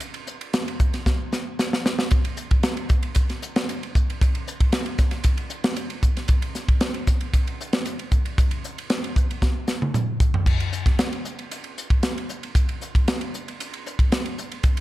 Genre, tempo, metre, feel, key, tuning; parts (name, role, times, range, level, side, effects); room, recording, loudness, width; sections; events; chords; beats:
jazz; 115 BPM; 4/4; straight
crisp fusion drum kit; drums; 0.0-14.8 s; crash cymbal, hi-hat, kick drum, ride cymbal, snare drum, toms; -21 LUFS; equal
light reverb; -21 LUFS; side -16 dB against mid
0.0-10.5 A section; 10.5-14.8 B section
drum fill 1.1-2.1, 9.4-10.5
| 0.02 0.54 1.06 1.59 | 2.11 2.63 3.16 3.68 | 4.20 4.73 5.25 5.77 | 6.29 6.82 7.34 7.86 | 8.38 8.90 9.42 9.94 | 10.47 10.99 11.51 12.03 | 12.55 13.07 13.60 14.12 | 14.64